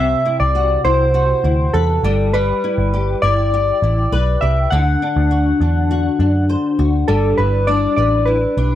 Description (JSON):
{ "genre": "indie pop, bedroom pop", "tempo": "101 BPM", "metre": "4/4", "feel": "straight", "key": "unclear", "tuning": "A4 = 440 Hz", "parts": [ { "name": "soft electric-piano-like synth keys", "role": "melody", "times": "0.0-8.8 s", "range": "A4 to F#5", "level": "-18 LUFS", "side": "equal", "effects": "lush chorus, slapback echo" }, { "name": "flamenco guitar", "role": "accompaniment", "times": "0.0-8.8 s", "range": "C3 to C5", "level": "-20 LUFS", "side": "left 3 dB", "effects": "ensemble chorus, warbly pitch drift" }, { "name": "vintage muted picked electric bass", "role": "bass", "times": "0.0-8.8 s", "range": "G1 to F#2", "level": "-17 LUFS", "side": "equal", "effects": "none" } ], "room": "light reverb", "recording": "none", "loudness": "-14 LUFS", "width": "side -12 dB against mid", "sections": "0.0-7.1 A section; 7.1-8.8 B section", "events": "none", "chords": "0.0 Cmaj9#11; 2.0 G69; 4.7 D7; 7.1 G6" }